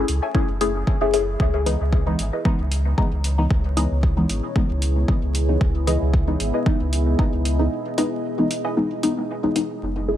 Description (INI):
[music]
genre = dub techno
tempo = 114 BPM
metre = 4/4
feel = swing 54% on 16ths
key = unclear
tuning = A4 = 440 Hz
[part]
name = filtered dub chord stab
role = stabs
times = 0.0-10.2 s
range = E3 to G#4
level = -24 LUFS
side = left 2 dB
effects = phaser, sidechain pumping, dub echo
[part]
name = warm sub bass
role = bass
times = 0.0-10.2 s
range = F#1 to C#2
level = -22 LUFS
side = equal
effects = tube saturation, sidechain pumping
[part]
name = electronic hi-hat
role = drums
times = 0.1-9.7 s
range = none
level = -30 LUFS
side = right 1 dB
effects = none
[part]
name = filtered dub chord stab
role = riff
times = 0.2-10.2 s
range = E4 to G#5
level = -32 LUFS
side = left 1 dB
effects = phaser, sidechain pumping, dub echo
[part]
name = electronic kick drum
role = drums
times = 0.3-7.3 s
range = none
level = -21 LUFS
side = equal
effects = overdrive
[part]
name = deep dark ambient pad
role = sustained chords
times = 3.4-10.2 s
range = B3 to D#5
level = -28 LUFS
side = right 1 dB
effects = chorus, built-in reverb, vintage 12-bit sampler grit, sidechain pumping
[part]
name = wind-like tuned noise texture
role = texture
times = 10.0-10.2 s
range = G#3 to G#4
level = -42 LUFS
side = right 2 dB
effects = none
[sound]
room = light reverb, digital ambience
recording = vinyl crackle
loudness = -19 LUFS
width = side -12 dB against mid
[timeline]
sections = 0.0-9.8 A section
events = break 7.7-9.8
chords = 0.0 F#m7; 1.4 C#m7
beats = 0.35 0.87 | 1.40 1.93 2.45 2.98 | 3.50 4.03 4.56 5.08 | 5.61 6.14 6.66 7.19 | 7.72 8.24 8.77 9.29 | 9.82